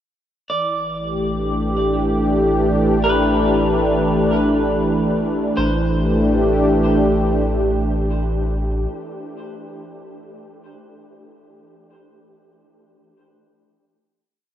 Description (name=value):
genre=ambient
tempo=free time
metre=none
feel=none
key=A minor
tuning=A4 = 440 Hz
part: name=warm analog pad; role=sustained chords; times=0.5-8.9 s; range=E3 to G4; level=-18 LUFS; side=equal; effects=chorus
part: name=clean electric guitar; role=arpeggios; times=0.5-9.4 s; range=B4 to D5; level=-26 LUFS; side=equal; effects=tape echo
part: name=warm sub bass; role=bass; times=0.5-8.9 s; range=A1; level=-24 LUFS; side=equal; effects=none
room=wet huge ambient reverb, RT60 8.6 s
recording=none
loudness=-16 LUFS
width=side -10 dB against mid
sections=0.5-5.6 A section; 5.6-8.1 final chord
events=none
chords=0.5 A5; 5.6 Am7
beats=free time